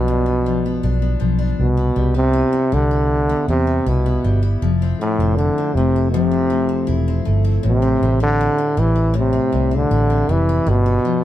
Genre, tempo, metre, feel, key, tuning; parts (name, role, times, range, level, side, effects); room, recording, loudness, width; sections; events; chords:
indie pop, bedroom pop; 79 BPM; 4/4; straight; A minor; A4 = 440 Hz
warm trombone; melody; 0.0-11.2 s; A2 to E3; -18 LUFS; right 1 dB
picked steel-string acoustic guitar; accompaniment; 0.0-11.2 s; G2 to E4; -24 LUFS; left 6 dB; vibrato effect
vintage muted fingered electric bass; bass; 0.0-11.0 s; E1 to E2; -18 LUFS; equal
light reverb; band playing live in one room; -15 LUFS; side -13 dB against mid
0.0-11.2 A section
0.0 G7; 1.6 Cmaj7; 4.6 Fmaj7; 7.6 Am7; 10.7 G7